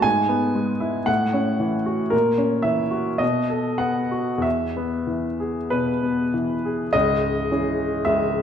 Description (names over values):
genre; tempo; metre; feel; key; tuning
classical, romantic character piece for solo piano; 47-59 BPM; 2/4; rubato; E major; A4 = 440 Hz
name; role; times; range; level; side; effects
clear upright piano; solo; 0.0-8.4 s; C#1 to G#5; -20 LUFS; equal; none
room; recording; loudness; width
wet recital hall reverb, RT60 1.6 s; dark, warm production; -20 LUFS; side -8 dB against mid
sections
0.0-6.9 A section; 6.9-8.4 B section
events
none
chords
0.1 E/G#; 1.1 F#m7/A; 2.1 F#7/A#; 3.2 B7; 4.4 E; 6.9 C#m